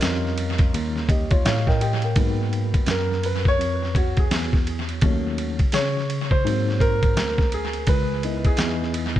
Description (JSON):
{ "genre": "hip hop, jazz-hop", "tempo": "84 BPM", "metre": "4/4", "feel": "swing 61% on 16ths", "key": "G# dorian", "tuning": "A4 = 440 Hz", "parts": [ { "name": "dark baby grand piano", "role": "accompaniment", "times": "0.0-9.2 s", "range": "F#3 to G5", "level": "-26 LUFS", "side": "equal", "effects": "tape echo" }, { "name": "tine electric piano", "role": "bass", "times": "0.0-9.2 s", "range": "C#2 to C#3", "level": "-25 LUFS", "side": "equal", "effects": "medium stereo tremolo" }, { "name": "boom bap sampler-style drum kit", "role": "drums", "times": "0.0-9.2 s", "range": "hi-hat, kick drum, ride cymbal, snare drum", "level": "-22 LUFS", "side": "equal", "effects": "vintage 12-bit sampler grit, tape echo" } ], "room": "little or no reverb", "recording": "echo-heavy mix", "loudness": "-19 LUFS", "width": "side -12 dB against mid", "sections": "0.0-2.2 A section; 2.2-9.2 B section", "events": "grand piano fill 1.1-2.2; grand piano solo 2.2-9.2", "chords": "0.0 D#7; 2.2 G#m7; 5.0 D#m7b5; 6.5 G#7; 7.9 C#m9", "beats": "0.03 0.74 1.45 | 2.17 2.88 3.60 4.31 | 5.03 5.74 6.45 7.17 | 7.88 8.60" }